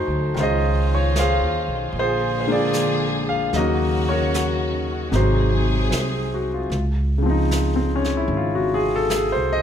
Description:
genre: jazz ballad.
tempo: 75 BPM.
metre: 4/4.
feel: swing 66% on 8ths.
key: Db major.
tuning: A4 = 440 Hz.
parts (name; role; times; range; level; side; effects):
clear concert grand piano; accompaniment; 0.0-9.6 s; C3 to Ab5; -21 LUFS; left 1 dB; none.
warm studio string section; sustained chords; 0.0-6.7 s; D3 to Ab4; -27 LUFS; equal; none.
upright bass; bass; 0.0-9.6 s; Ab1 to Eb2; -23 LUFS; right 1 dB; none.
jazz brush drum kit; drums; 0.4-9.6 s; brushed snare drum, hi-hat, snare drum; -31 LUFS; right 2 dB; none.
room: light reverb.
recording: none.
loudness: -18 LUFS.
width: side -8 dB against mid.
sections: 0.0-6.7 A section; 6.7-9.6 B section.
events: none.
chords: 0.4 Dbmaj9; 1.9 Bb7; 3.5 Ebm7; 5.1 Ab7; 6.7 Dbmaj9.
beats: | 0.35 1.15 1.95 2.74 | 3.54 4.33 5.13 5.92 | 6.72 7.52 8.31 9.11.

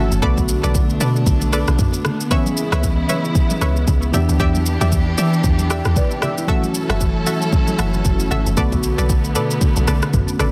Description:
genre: amapiano.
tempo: 115 BPM.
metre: 4/4.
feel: swing 58% on 16ths.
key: unclear.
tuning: A4 = 439 Hz.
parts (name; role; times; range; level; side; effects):
tine electric piano; accompaniment; 0.0-10.5 s; D3 to G5; -25 LUFS; equal; phaser.
warm studio string section; sustained chords; 0.0-10.5 s; C#3 to A4; -29 LUFS; equal; sidechain pumping.
analog pluck; stabs; 0.0-10.5 s; F#4 to E5; -28 LUFS; equal; chorus, tape echo.
deep log drum bass; bass; 0.0-10.5 s; F#1 to E3; -22 LUFS; equal; none.
deep house drum kit; drums; 0.1-10.5 s; kick drum, rim click, shaker, toms; -22 LUFS; equal; none.
congas; percussion; 0.4-10.5 s; none; -31 LUFS; equal; none.
room: digital ambience.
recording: dense, heavily limited modern master.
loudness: -18 LUFS.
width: mono.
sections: 0.0-10.5 A section.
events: tine electric piano fill 5.4-6.5.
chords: 0.2 Bm7; 2.3 C#m7; 4.1 Em7; 6.5 F#m7; 8.6 Bm7.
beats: | 0.22 0.75 1.27 1.79 | 2.31 2.83 3.35 3.88 | 4.40 4.92 5.44 5.96 | 6.49 7.01 7.53 8.05 | 8.57 9.09 9.62 10.14.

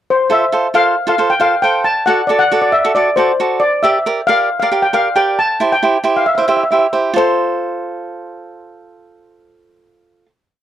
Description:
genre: calypso.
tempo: 136 BPM.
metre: 4/4.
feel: straight.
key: F major.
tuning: A4 = 440 Hz.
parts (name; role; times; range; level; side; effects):
steel pan; melody; 0.1-10.3 s; C5 to A5; -14 LUFS; left 2 dB; none.
cavaquinho; accompaniment; 0.3-10.3 s; E4 to D5; -16 LUFS; right 3 dB; none.
room: moderate booth ambience, RT60 0.3 s.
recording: dry, close 1970s-style studio recording.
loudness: -12 LUFS.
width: side -11 dB against mid.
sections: 0.1-7.2 verse; 7.2-10.6 final chord.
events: none.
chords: 0.1 F; 1.9 D; 3.6 Gm; 5.4 C; 7.2 F.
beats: | 0.09 0.53 0.97 1.41 | 1.85 2.29 2.73 3.17 | 3.62 4.06 4.50 4.94 | 5.39 5.83 6.27 6.72 | 7.16 7.61 8.05 8.49 | 8.94 9.38 9.83 10.27.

